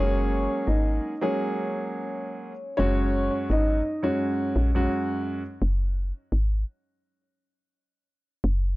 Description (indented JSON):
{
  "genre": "hip hop, boom-bap hip-hop",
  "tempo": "85 BPM",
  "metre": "4/4",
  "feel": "swing 55% on 16ths",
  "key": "F# major",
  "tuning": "A4 = 439 Hz",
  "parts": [
    { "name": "dark upright piano", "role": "melody", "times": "0.0-4.9 s", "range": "C#4 to D#5", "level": "-28 LUFS", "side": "left 1 dB", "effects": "high-pass filter, low-pass filter, analog delay" },
    { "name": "dark grand piano", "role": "accompaniment", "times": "0.0-5.4 s", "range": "F#2 to G#4", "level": "-28 LUFS", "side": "right 1 dB", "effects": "high-pass filter, low-pass filter" },
    { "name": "woody FM bass", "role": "bass", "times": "0.0-8.8 s", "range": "F#1 to A#1", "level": "-24 LUFS", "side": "equal", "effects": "tube saturation" }
  ],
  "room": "small room ambience",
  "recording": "dry, gritty hardware recording",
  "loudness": "-24 LUFS",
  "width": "side -19 dB against mid",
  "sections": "0.0-8.8 A section",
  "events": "break 5.6-8.8",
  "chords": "0.0 F#add9; 5.6 F#sus2"
}